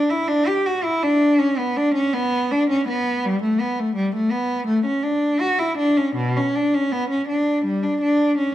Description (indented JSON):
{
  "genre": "classical, baroque-style suite movement for unaccompanied cello",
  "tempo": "81 BPM",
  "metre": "4/4",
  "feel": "rubato",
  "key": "D major",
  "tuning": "A4 = 440 Hz",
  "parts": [
    { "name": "rich cello", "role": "solo", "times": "0.0-8.5 s", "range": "B2 to G4", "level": "-18 LUFS", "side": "equal", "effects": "none" }
  ],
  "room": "moderate recital hall reverb, RT60 1.3 s",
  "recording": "dark, warm production",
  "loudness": "-18 LUFS",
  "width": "side -13 dB against mid",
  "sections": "0.0-8.5 A section",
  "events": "none",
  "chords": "none"
}